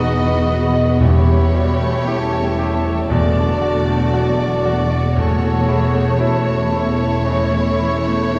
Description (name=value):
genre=cinematic, emotional film score for orchestra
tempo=58 BPM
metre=4/4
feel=rubato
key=unclear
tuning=A4 = 440 Hz
part: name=warm symphonic violin section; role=melody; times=0.0-8.4 s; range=C#5 to D#5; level=-28 LUFS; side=equal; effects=none
part: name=hollow small flute group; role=second line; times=0.0-8.4 s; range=A5 to C#6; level=-31 LUFS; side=equal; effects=none
part: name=mellow clarinet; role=second line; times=0.0-8.4 s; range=D#4 to A4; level=-30 LUFS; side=equal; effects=none
part: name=mellow cor anglais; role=second line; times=0.0-8.4 s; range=C#5 to E5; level=-28 LUFS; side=equal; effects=none
part: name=warm symphonic violin section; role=second line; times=0.0-8.4 s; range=E4 to G4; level=-31 LUFS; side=equal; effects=none
part: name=bright baby grand piano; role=accompaniment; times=0.0-8.4 s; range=E2 to D#5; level=-27 LUFS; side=equal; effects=none
part: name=dark symphonic viola section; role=accompaniment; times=0.0-8.4 s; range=A3 to B3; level=-29 LUFS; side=equal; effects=none
part: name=mellow French horn section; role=sustained chords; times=0.0-8.4 s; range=F#3 to D#4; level=-29 LUFS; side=equal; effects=none
part: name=clear symphonic double bass section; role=bass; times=0.0-8.4 s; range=E1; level=-24 LUFS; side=equal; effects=none
part: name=warm symphonic cello section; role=bass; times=0.0-8.4 s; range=E2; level=-24 LUFS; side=equal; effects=none
part: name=timpani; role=percussion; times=1.0-6.7 s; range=E2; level=-23 LUFS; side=equal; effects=none
room=wet recital hall reverb, RT60 1.3 s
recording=recorded in a church or concert hall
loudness=-17 LUFS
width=mono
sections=0.0-8.4 A section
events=none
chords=0.0 B/E; 1.0 A7/E; 3.1 D/E; 5.2 A/E